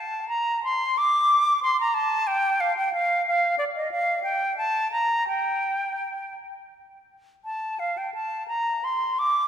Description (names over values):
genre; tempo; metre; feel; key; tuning
classical, baroque-style fantasia for unaccompanied flute; 54-63 BPM (dotted quarters); 6/8; rubato; F major; A4 = 439 Hz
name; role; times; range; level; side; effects
silver concert flute; solo; 0.0-9.5 s; D5 to D6; -22 LUFS; equal; none
room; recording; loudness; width
wet church reverb, RT60 2.6 s; recorded in a church or concert hall; -22 LUFS; side -9 dB against mid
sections
0.0-7.5 A section; 7.5-9.5 A section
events
none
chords
none